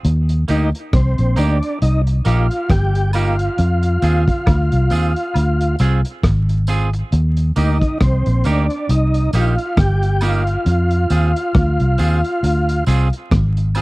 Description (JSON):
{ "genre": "roots reggae", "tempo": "68 BPM", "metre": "4/4", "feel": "swing 57% on 16ths", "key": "Eb major", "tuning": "A4 = 440 Hz", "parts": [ { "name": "vintage muted fingered electric bass", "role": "bass", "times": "0.0-13.8 s", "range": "G1 to F2", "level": "-15 LUFS", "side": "equal", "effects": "none" }, { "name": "crunchy breakbeat drum kit", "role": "drums", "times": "0.0-13.8 s", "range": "hi-hat, kick drum, rim click", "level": "-19 LUFS", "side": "equal", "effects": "none" }, { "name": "tonewheel organ", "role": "melody", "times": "0.5-12.8 s", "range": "C4 to G4", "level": "-21 LUFS", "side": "equal", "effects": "chorus vibrato, tape echo" }, { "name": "clean electric guitar", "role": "accompaniment", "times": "0.5-13.8 s", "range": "Bb3 to Ab4", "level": "-26 LUFS", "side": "right 5 dB", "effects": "tape echo" }, { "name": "tambourine and woodblock", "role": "percussion", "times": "0.5-13.8 s", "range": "none", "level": "-34 LUFS", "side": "right 1 dB", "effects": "none" } ], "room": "little or no reverb", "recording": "dry, close 1970s-style studio recording, vinyl crackle", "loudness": "-14 LUFS", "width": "side -21 dB against mid", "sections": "0.0-13.8 A section", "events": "none", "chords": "0.0 Eb; 3.6 Fm; 7.1 Eb; 10.7 Fm" }